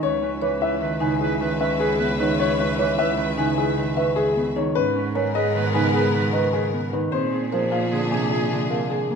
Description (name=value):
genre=classical, minimalist pattern music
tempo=152 BPM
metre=6/4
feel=straight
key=unclear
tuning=A4 = 442 Hz
part: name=dark baby grand piano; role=melody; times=0.0-9.2 s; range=G#4 to G#5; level=-26 LUFS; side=left 11 dB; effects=none
part: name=bright clarinet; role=second line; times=0.0-9.2 s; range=G#4 to B4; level=-30 LUFS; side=right 5 dB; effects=none
part: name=Celtic harp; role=accompaniment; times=0.0-9.2 s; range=B#2 to C#4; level=-28 LUFS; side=left 1 dB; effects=none
part: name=warm studio string section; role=sustained chords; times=0.0-9.2 s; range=B3 to E5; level=-31 LUFS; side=left 3 dB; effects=none
part: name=marimba with soft mallets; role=arpeggios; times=0.0-9.2 s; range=B#3 to C#5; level=-25 LUFS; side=right 6 dB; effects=none
part: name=rich cello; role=bass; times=0.0-9.2 s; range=C#2 to A#2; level=-28 LUFS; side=right 3 dB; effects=none
room=moderate recital hall reverb, RT60 1.5 s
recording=minimal, uncompressed stereo recording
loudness=-20 LUFS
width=side -6 dB against mid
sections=0.0-9.2 A section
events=none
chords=0.0 C#m7; 4.8 G#madd9; 7.1 A#7